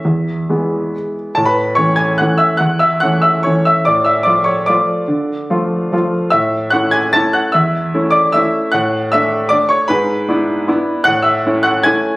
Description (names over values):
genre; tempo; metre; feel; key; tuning
classical, piano waltz; 136-161 BPM; 3/4; rubato; A major; A4 = 440 Hz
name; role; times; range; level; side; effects
clear baby grand piano; solo; 0.0-12.2 s; E2 to A6; -12 LUFS; equal; none
room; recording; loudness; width
moderate large studio reverb, RT60 0.9 s; recorded on a phone in the room, club reverb, compression; -12 LUFS; side -21 dB against mid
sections
0.0-1.4 A section; 1.4-12.2 B section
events
none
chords
0.1 E; 1.4 A; 3.9 Dm/A; 6.3 A; 8.7 D/A; 9.9 E7/G#; 11.1 A